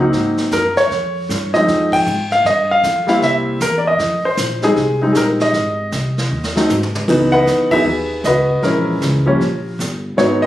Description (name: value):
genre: jazz piano trio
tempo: 155 BPM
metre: 4/4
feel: swing 64% on 8ths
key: C# minor from 7.1 s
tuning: A4 = 440 Hz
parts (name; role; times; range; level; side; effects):
- warm baby grand piano; melody; 0.0-10.5 s; E3 to G5; -14 LUFS; equal; none
- upright bass; bass; 0.0-10.5 s; G1 to Ab2; -22 LUFS; equal; none
- jazz brush drum kit; drums; 0.1-10.5 s; brushed snare drum, crash cymbal, hi-hat, kick drum, ride cymbal, snare drum, toms; -26 LUFS; right 2 dB; none
room: light reverb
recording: recorded on a phone in the room, studio reverb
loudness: -14 LUFS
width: side -13 dB against mid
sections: 0.0-7.1 A section; 7.1-10.5 B section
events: band accent 1.9, 7.7; drum fill 6.3-7.1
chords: 0.1 Ab7; 0.9 Dbmaj7; 2.4 F7sus2; 3.2 C7; 4.0 Fm7; 5.5 Ab; 7.1 C#m11; 8.6 A#m7b5; 9.4 Gm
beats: 0.13 0.52 | 0.90 1.29 1.67 2.06 | 2.45 2.83 3.22 3.61 | 3.99 4.38 4.77 5.15 | 5.54 5.93 6.31 6.70 | 7.09 7.47 7.86 8.25 | 8.63 9.02 9.40 9.79 | 10.18